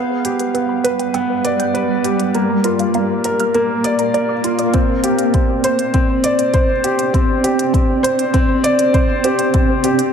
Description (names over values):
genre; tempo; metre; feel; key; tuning
piano and strings electronica; 100 BPM; 4/4; straight; unclear; A4 = 440 Hz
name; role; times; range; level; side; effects
granular cloud pad; sustained chords; 0.0-10.1 s; G3 to G5; -20 LUFS; equal; built-in reverb, sidechain pumping
felt-muted upright piano; riff; 0.0-10.1 s; Bb3 to D5; -17 LUFS; equal; ping-pong delay
electronic hi-hat; drums; 0.2-10.1 s; none; -26 LUFS; right 4 dB; none
warbly dusty pluck; arpeggios; 0.5-10.1 s; Bb4 to G6; -25 LUFS; right 2 dB; chorus, sidechain pumping, ping-pong delay
electronic kick drum; drums; 4.7-9.7 s; none; -16 LUFS; left 1 dB; none
room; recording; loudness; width
moderate echo chamber reverb, RT60 2.2 s; none; -14 LUFS; side -7 dB against mid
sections
0.0-4.7 A section; 4.7-10.1 B section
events
build-up 4.7-10.1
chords
0.0 G; 2.3 Bb; 4.7 Csus2